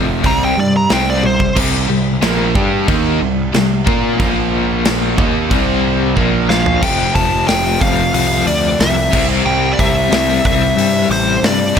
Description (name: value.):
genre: hard rock.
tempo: 91 BPM.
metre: 4/4.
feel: straight.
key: unclear.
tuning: A4 = 441 Hz.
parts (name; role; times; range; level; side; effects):
crunchy overdriven guitar; riff; 0.0-6.8 s; F2 to Bb4; -20 LUFS; right 13 dB; none.
overdriven electric guitar; riff; 0.0-11.8 s; F2 to Bb4; -19 LUFS; left 12 dB; tremolo.
fuzz picked electric bass; bass; 0.0-11.8 s; F1 to Bb2; -19 LUFS; equal; overdrive.
big rock drum kit; drums; 0.2-11.8 s; crash cymbal, hi-hat, kick drum, snare drum, toms; -18 LUFS; equal; none.
nasal lead guitar with a parked wah; melody; 0.3-1.6, 6.5-11.8 s; C5 to Bb5; -17 LUFS; right 1 dB; overdrive, digital delay.
overdriven electric guitar; riff; 1.6-11.8 s; F2 to Bb4; -21 LUFS; equal; none.
room: light reverb, studio ambience.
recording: none.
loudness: -12 LUFS.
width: side -7 dB against mid.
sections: 0.0-1.6 A section; 1.6-6.8 B section; 6.8-11.8 C section.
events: lead electric guitar solo 0.0-1.6; drum fill 1.2-1.6, 6.2-6.8.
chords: 0.2 C5; 4.2 Bb5; 5.2 C5; 6.2 Bb5; 6.8 F; 9.1 C.